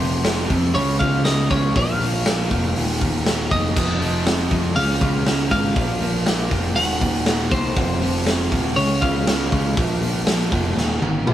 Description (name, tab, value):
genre	indie rock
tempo	120 BPM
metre	4/4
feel	straight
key	unclear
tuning	A4 = 441 Hz
part	twelve-string electric guitar	melody	0.0-11.2 s	C5 to Gb5	-26 LUFS	equal	analog delay
part	overdriven tine electric piano	second line	0.0-11.2 s	C4 to Gb4	-37 LUFS	left 2 dB	none
part	overdriven electric guitar	riff	0.0-11.3 s	Eb2 to Db4	-24 LUFS	right 3 dB	none
part	thick fuzz guitar	riff	0.0-11.3 s	Eb2 to Db4	-30 LUFS	left 4 dB	none
part	growling picked electric bass	bass	0.0-11.3 s	Eb1 to F2	-24 LUFS	equal	overdrive
part	raw garage drum kit	drums	0.0-11.3 s	crash cymbal, hi-hat, kick drum, snare drum, toms	-22 LUFS	equal	none
room	moderate stone room reverb, RT60 1.0 s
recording	rough rehearsal-room recording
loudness	-17 LUFS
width	side -12 dB against mid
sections	0.0-11.3 A section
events	drum fill 10.8-11.3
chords	0.0 F5; 0.7 Db5; 1.8 Bb5; 2.8 Eb5; 3.8 F5; 4.8 Db; 5.8 Bb5; 6.8 Ebm; 7.8 F5; 8.8 Db; 9.8 Bb5; 10.8 Eb5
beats	0.25 0.75 1.25 | 1.75 2.25 2.75 3.26 | 3.76 4.26 4.76 5.26 | 5.76 6.26 6.76 7.26 | 7.76 8.26 8.76 9.26 | 9.76 10.26 10.76 11.26